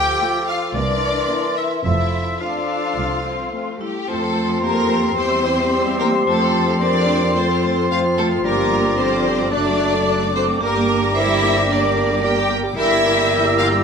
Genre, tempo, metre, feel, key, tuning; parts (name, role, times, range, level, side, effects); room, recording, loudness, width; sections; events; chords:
cinematic, playful, whimsical film cue; 110 BPM; 4/4; straight; F major; A4 = 440 Hz
warm studio violin section; melody; 0.0-13.8 s; D5 to A6; -29 LUFS; left 4 dB
clear oboe; second line; 0.0-13.8 s; D5 to C6; -27 LUFS; right 1 dB
mellow clarinet; second line; 0.0-13.8 s; F4 to Bb4; -29 LUFS; left 3 dB
mellow large flute ensemble; second line; 0.0-13.8 s; C6 to E6; -25 LUFS; right 1 dB
warm studio violin section; second line; 0.0-13.7 s; D4 to G5; -23 LUFS; left 3 dB
mellow bassoon; accompaniment; 0.0-13.8 s; E3 to C4; -27 LUFS; right 2 dB
dark studio double bass section; bass; 0.0-13.8 s; F1 to F2; -25 LUFS; right 1 dB
rich studio cello section; bass; 0.0-13.8 s; C2 to G4; -24 LUFS; right 3 dB
warm studio viola section; accompaniment; 0.2-13.8 s; E3 to E5; -27 LUFS; left 2 dB
mellow French horn section; sustained chords; 0.2-13.8 s; F3 to F4; -27 LUFS; left 4 dB
vibraphone with hard mallets; melody; 3.8-13.8 s; E4 to D5; -26 LUFS; right 2 dB
moderate scoring stage reverb, RT60 1.7 s; -16 LUFS; side -6 dB against mid
0.0-4.1 A section; 4.1-13.8 B section
0.0 Dm; 0.8 C7; 1.9 F; 5.2 C/E; 6.3 F; 8.4 Gm7; 9.5 D/F#; 10.6 Gm; 12.8 Edim/G